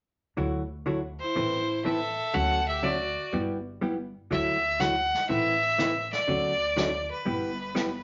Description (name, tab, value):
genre	country, western swing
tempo	122 BPM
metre	4/4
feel	swing 69% on 8ths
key	D major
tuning	A4 = 440 Hz
part	hollow-body jazz guitar	accompaniment	0.4-7.9 s	D3 to B4	-32 LUFS	equal	none
part	upright bass	bass	0.4-8.0 s	G1 to D2	-40 LUFS	equal	none
part	clear fiddle	melody	1.2-8.0 s	B4 to F#5	-29 LUFS	equal	none
part	clear fiddle	second line	1.2-3.3 s	E4 to A4	-36 LUFS	equal	none
part	jazz brush drum kit	drums	4.3-8.0 s	brushed snare drum, hi-hat, snare drum	-39 LUFS	equal	none
room	wet studio reverb, RT60 0.6 s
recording	nothing above 7.5 kHz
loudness	-28 LUFS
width	mono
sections	0.4-4.3 A section; 4.3-8.0 B section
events	none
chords	0.4 Dadd9; 1.4 Amadd9; 2.3 Dmaj7; 3.3 G6; 4.3 Dadd9; 5.3 Amadd9; 6.3 Dmaj7; 7.3 G6